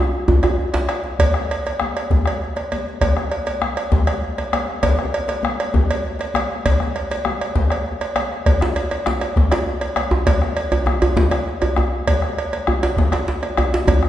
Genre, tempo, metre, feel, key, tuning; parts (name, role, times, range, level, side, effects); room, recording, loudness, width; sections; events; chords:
west african traditional, West African drum ensemble; 132 BPM (dotted quarters); 12/8; straight
djembe; percussion; 0.1-14.1 s; -23 LUFS; left 2 dB
bombo; percussion; 0.3-14.1 s; -22 LUFS; equal
djembe; percussion; 0.3-0.9, 8.6-14.0 s; -20 LUFS; right 1 dB
cowbell; percussion; 0.4-14.0 s; -24 LUFS; right 2 dB
wet recital hall reverb, RT60 1.6 s; recorded in a church or concert hall, nothing above 11.0 kHz; -17 LUFS; side -12 dB against mid
0.0-1.2 A section; 1.2-14.1 B section
drum fill 0.0-1.2, 13.9